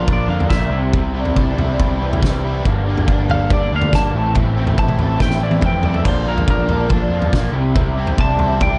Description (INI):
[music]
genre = indie rock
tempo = 141 BPM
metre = 4/4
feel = straight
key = unclear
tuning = A4 = 440 Hz
[part]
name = twelve-string electric guitar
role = melody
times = 0.0-8.8 s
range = Bb4 to A5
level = -25 LUFS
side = equal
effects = phaser, slapback echo
[part]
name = crunchy overdriven guitar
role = riff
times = 0.0-8.8 s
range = G2 to Bb4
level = -27 LUFS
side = equal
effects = none
[part]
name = overdriven semi-hollow guitar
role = riff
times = 0.0-8.8 s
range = G2 to A4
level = -26 LUFS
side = equal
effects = ensemble chorus, slapback echo
[part]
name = growling picked electric bass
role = bass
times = 0.0-8.8 s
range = G1 to F2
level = -22 LUFS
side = equal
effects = overdrive
[part]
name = loose indie drum kit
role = drums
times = 0.1-8.7 s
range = crash cymbal, kick drum, snare drum, toms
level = -21 LUFS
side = equal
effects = none
[part]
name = phased analog pad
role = sustained chords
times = 6.8-8.8 s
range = C5 to D6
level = -38 LUFS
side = equal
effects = none
[sound]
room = light reverb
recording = dark, warm production, nothing above 10.3 kHz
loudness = -17 LUFS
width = mono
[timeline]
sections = 0.0-8.8 A section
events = clean electric guitar solo 0.0-8.8; drum fill 5.2-6.1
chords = 0.0 Bbmaj7; 0.7 Cadd9; 2.6 Gmadd9; 4.1 Am; 6.1 Bbmaj7; 7.5 Cadd9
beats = 0.08 0.51 | 0.94 1.36 1.79 2.22 | 2.65 3.07 3.50 3.92 | 4.35 4.78 5.20 5.63 | 6.05 6.48 6.91 7.33 | 7.76 8.19 8.61